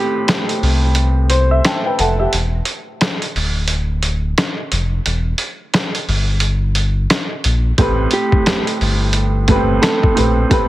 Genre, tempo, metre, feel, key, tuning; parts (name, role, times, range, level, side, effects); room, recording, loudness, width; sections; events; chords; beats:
hip hop, boom-bap hip-hop; 88 BPM; 4/4; swing 60% on 16ths; A minor; A4 = 440 Hz
nylon-string guitar; melody; 0.0-0.5, 8.1-10.1 s; G4 to A4; -22 LUFS; equal; high-pass filter, low-pass filter, ping-pong delay
warm upright piano; accompaniment; 0.0-2.4, 7.8-10.7 s; A2 to A5; -18 LUFS; right 1 dB; high-pass filter, low-pass filter
trip hop sampler-style drum kit; drums; 0.3-10.7 s; hi-hat, kick drum, rim click, snare drum; -18 LUFS; equal
sub bass with octave; bass; 0.6-10.4 s; D1 to C2; -16 LUFS; equal
little or no reverb; heavily compressed radio sound, multiband compression; -14 LUFS; side -16 dB against mid
0.0-10.7 A section
break 0.0-7.8
0.0 Am9; 2.3 Em7; 7.8 Am9
0.28 0.96 1.65 | 2.33 3.01 3.69 4.37 | 5.06 5.74 6.42 7.10 | 7.78 8.46 9.15 9.83 | 10.51